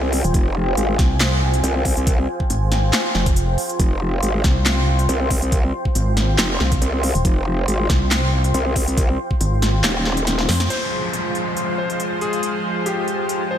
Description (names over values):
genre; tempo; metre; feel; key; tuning
heavy wobble dubstep; 139 BPM; 4/4; swing 54% on 16ths, half-time; F minor; A4 = 441 Hz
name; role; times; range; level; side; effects
supersaw pad; sustained chords; 0.0-13.6 s; F3 to C6; -24 LUFS; equal; lush chorus, sidechain pumping, low-pass filter
growl bass; bass; 0.0-10.5 s; Eb1 to C2; -20 LUFS; equal; chorus, overdrive
big-room dance drum kit; drums; 0.1-13.4 s; crash cymbal, handclaps, hi-hat, snare drum; -23 LUFS; equal; none
pulsing pluck wobble bass; bass; 0.2-10.7 s; Eb1 to F2; -18 LUFS; equal; chorus, overdrive
electronic kick drum; drums; 0.3-9.4 s; none; -19 LUFS; equal; overdrive
bright concert grand piano; melody; 10.7-13.6 s; G4 to C5; -26 LUFS; left 2 dB; diffuse ambient delay
downlifter; sound effects; 10.7-13.6 s; none; -30 LUFS; left 1 dB; none
room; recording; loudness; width
light reverb, digital ambience; none; -17 LUFS; side -10 dB against mid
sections
0.0-10.7 A section; 10.7-13.6 B section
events
drop 0.0-10.7; kick drops out 9.8-10.7; drum fill 10.3-10.7; band accent 10.6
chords
0.0 Fmadd9; 10.7 Fm